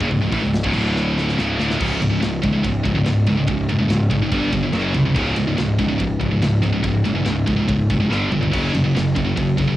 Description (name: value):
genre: heavy metal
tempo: 143 BPM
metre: 4/4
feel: straight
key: unclear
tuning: A4 = 440 Hz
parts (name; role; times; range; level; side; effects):
- scooped high-gain guitar; riff; 0.0-9.8 s; C#2 to G3; -18 LUFS; equal; distortion, cassette tape
- fuzz picked electric bass; bass; 0.0-9.8 s; C#1 to B#1; -23 LUFS; equal; overdrive
- tight metal drum kit; drums; 0.0-9.7 s; crash cymbal, hi-hat, kick drum, ride cymbal, snare drum, toms; -27 LUFS; equal; cassette tape
room: light reverb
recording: home recording on cassette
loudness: -17 LUFS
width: side -14 dB against mid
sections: 0.0-1.8 A section; 1.8-9.8 B section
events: drum fill 1.0-1.8, 8.1-8.5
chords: 0.0 C#m; 0.7 D5; 1.4 C#5; 4.3 G5; 4.7 F#5; 5.2 C#5; 8.1 G5; 8.5 F#5